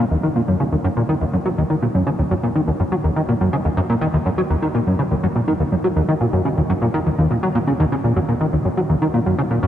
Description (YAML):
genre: ambient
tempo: 123 BPM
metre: 4/4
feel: straight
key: Eb minor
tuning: A4 = 444 Hz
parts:
  - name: plucky analog bass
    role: solo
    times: 0.0-9.7 s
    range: Eb2 to Gb3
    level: -16 LUFS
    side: equal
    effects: analog chorus, cassette tape, tape echo
room: wet cathedral reverb, RT60 6.6 s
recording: in a vast, echoing space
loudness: -17 LUFS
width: side -10 dB against mid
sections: 0.0-9.7 A section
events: none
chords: none